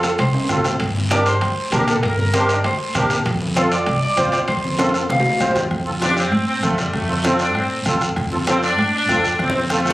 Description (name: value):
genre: latin, cumbia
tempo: 196 BPM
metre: 4/4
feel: straight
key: F major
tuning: A4 = 444 Hz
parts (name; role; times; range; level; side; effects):
- electric guitar at the edge of break-up; second line; 0.0-5.5 s; A4 to F5; -22 LUFS; equal; none
- musette accordion; accompaniment; 0.0-9.9 s; C4 to C5; -21 LUFS; right 1 dB; none
- upright bass; bass; 0.0-9.9 s; C2 to Bb2; -22 LUFS; equal; none
- bombo; percussion; 0.0-9.9 s; none; -28 LUFS; equal; none
- guiro; percussion; 0.0-9.9 s; none; -29 LUFS; equal; none
- timbales; percussion; 0.0-5.7 s; none; -27 LUFS; right 1 dB; none
- congas; percussion; 0.2-9.9 s; none; -27 LUFS; left 1 dB; none
- clear saxophone section; melody; 6.0-9.9 s; G3 to D4; -21 LUFS; equal; none
room: moderate studio reverb, RT60 0.8 s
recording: recorded on a phone in the room, club reverb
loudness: -16 LUFS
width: side -17 dB against mid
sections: 0.0-5.7 A section; 5.7-9.9 B section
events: clean electric guitar solo 0.0-5.7; drum fill 0.3-0.8, 4.8-5.7, 9.4-9.9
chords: 0.0 F; 0.8 Gm; 3.3 F